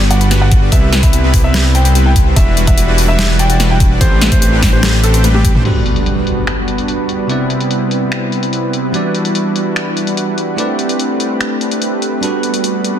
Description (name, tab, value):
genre	future bass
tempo	146 BPM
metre	4/4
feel	half-time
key	G major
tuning	A4 = 440 Hz
part	thumb-piano-like synth pluck	arpeggios	0.0-5.6 s	E4 to B5	-28 LUFS	right 2 dB	none
part	soft supersaw	riff	0.0-13.0 s	G3 to D5	-17 LUFS	equal	sidechain pumping, low-pass filter, digital delay
part	fat analog bass	bass	0.0-5.6 s	E1 to C2	-12 LUFS	equal	tube saturation, sidechain pumping
part	warm grand piano	melody	0.1-5.5 s	G4 to G5	-21 LUFS	equal	sidechain pumping, tape echo
part	dubstep drum kit	drums	0.1-12.9 s	crash cymbal, finger snaps, hi-hat, snare drum, toms	-19 LUFS	left 2 dB	overdrive, low-pass filter on hats, studio reverb, low-pass filter on snare, low-pass filter on toms, low-pass filter on cymbals
part	electronic kick drum	drums	0.5-5.5 s	none	-11 LUFS	equal	overdrive, studio reverb
part	bell-like tine electric piano	accompaniment	5.6-13.0 s	C3 to D5	-21 LUFS	right 2 dB	sidechain pumping, digital delay
part	shimmering ambient pad	sustained chords	6.7-13.0 s	G3 to F#5	-26 LUFS	equal	chorus, built-in reverb, sidechain pumping
part	impact	sound effects	5.7-7.3 s	none	-19 LUFS	equal	none
room	light reverb, digital ambience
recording	dense, heavily limited modern master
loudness	-11 LUFS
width	side -10 dB against mid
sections	0.0-5.7 A section; 5.7-13.0 B section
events	drop 0.0-5.7; drum fill 5.2-5.7; impact 5.7-7.3; filter sweep on drum 5.7-13.0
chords	0.0 Gmaj7; 0.7 Cmaj7; 2.4 Em9; 4.0 Am11; 5.7 Gmaj7; 7.3 Cmaj7; 8.9 Em9; 10.6 Am11; 12.2 Gmaj7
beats	0.31 | 0.72 1.13 1.54 1.95 | 2.37 2.78 3.19 3.60 | 4.01 4.42 4.83 5.24 | 5.65 6.06 6.47 6.89 | 7.30 7.71 8.12 8.53 | 8.94 9.35 9.76 10.17 | 10.59 10.99 11.41 11.82 | 12.23 12.64